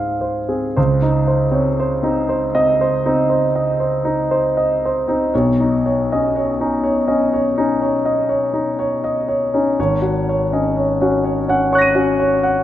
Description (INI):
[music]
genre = classical, impressionist solo piano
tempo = 40 BPM (dotted quarters)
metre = 9/8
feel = rubato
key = unclear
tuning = A4 = 441 Hz
[part]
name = clear concert grand piano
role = solo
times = 0.0-12.6 s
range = Ab1 to Eb7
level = -15 LUFS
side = equal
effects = none
[sound]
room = moderate scoring stage reverb, RT60 1.9 s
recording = none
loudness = -15 LUFS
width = side -12 dB against mid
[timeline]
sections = 0.8-12.6 A section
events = none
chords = 0.0 Dbmaj7; 0.8 Dbsus2; 5.3 Cbadd9; 9.8 Ab9sus4